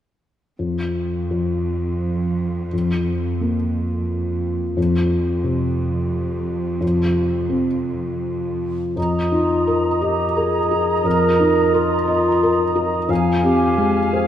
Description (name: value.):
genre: cinematic, emotional film score for orchestra.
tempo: 87 BPM.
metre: 3/4.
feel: rubato.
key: F minor.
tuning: A4 = 440 Hz.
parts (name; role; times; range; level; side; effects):
felt-muted upright piano; accompaniment; 0.6-14.3 s; F2 to Eb5; -20 LUFS; left 2 dB; none.
rich symphonic cello section; bass; 0.6-8.7 s; F2; -26 LUFS; right 4 dB; none.
flute section; second line; 9.0-14.3 s; Ab5 to Bb5; -25 LUFS; right 2 dB; none.
warm oboe; second line; 9.0-14.3 s; Eb5 to F5; -24 LUFS; right 2 dB; none.
mellow clarinet; second line; 9.3-14.3 s; F4 to Bb4; -20 LUFS; equal; none.
room: wet concert hall reverb, RT60 2.1 s.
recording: none.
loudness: -18 LUFS.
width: side -10 dB against mid.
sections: 0.6-9.0 A section; 9.0-14.3 B section.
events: none.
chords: 0.6 Fsus4; 4.8 F5; 9.0 Ebsus2/F; 13.1 Fm.